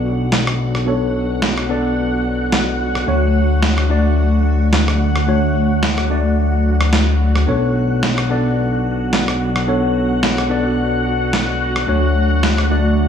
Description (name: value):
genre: nu-disco, nu disco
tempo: 109 BPM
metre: 4/4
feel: swing 55% on 16ths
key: B minor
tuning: A4 = 440 Hz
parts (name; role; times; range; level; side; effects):
- tine electric piano; accompaniment; 0.0-13.1 s; A3 to D5; -19 LUFS; equal; medium stereo tremolo, low-pass filter, dub echo
- string machine, full ensemble; sustained chords; 0.0-13.1 s; F#4 to F#5; -23 LUFS; left 1 dB; ensemble chorus
- fat analog bass; bass; 0.0-13.1 s; B1 to D2; -18 LUFS; left 1 dB; none
- electronic snare drum and rim click; drums; 0.3-12.7 s; none; -21 LUFS; right 1 dB; overdrive
room: light reverb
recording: studio ambience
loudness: -14 LUFS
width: side -8 dB against mid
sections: 0.0-13.1 A section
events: none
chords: 0.0 Bm9; 3.1 Dmaj7; 7.5 Bm9; 11.9 Dmaj7